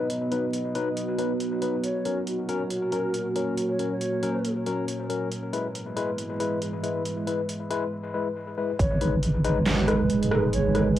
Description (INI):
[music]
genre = deep dubstep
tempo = 138 BPM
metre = 4/4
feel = swing 60% on 16ths, half-time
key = G# minor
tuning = A4 = 439 Hz
[part]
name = deep dark ambient pad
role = sustained chords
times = 0.0-11.0 s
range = G#3 to D#5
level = -28 LUFS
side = right 2 dB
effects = chorus, built-in reverb, cassette tape
[part]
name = barky tine electric piano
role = stabs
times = 0.0-10.9 s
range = F#3 to B4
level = -30 LUFS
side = left 4 dB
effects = overdrive, auto-pan, cassette tape, dub echo
[part]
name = dubstep drum kit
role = drums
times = 0.1-11.0 s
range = handclaps, hi-hat, rim click, snare drum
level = -31 LUFS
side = right 2 dB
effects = overdrive, cassette tape
[part]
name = breathy mellow ney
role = melody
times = 1.8-4.5, 8.8-10.9 s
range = A#4 to C#5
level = -34 LUFS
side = right 1 dB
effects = cassette tape, dub echo
[part]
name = deep soft wobble bass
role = bass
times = 8.8-11.0 s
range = D#1 to G#1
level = -25 LUFS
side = right 1 dB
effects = chorus, tube saturation
[part]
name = electronic kick drum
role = drums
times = 8.8-8.9 s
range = none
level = -26 LUFS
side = equal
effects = overdrive, cassette tape
[sound]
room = wet studio reverb, RT60 0.6 s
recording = home recording on cassette, vinyl crackle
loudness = -24 LUFS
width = side -12 dB against mid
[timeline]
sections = 0.0-8.8 A section; 8.8-11.0 B section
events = filter sweep on ambient pad 0.0-8.8; drop 8.8-11.0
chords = 0.0 B; 1.8 F#; 5.3 E; 8.8 G#m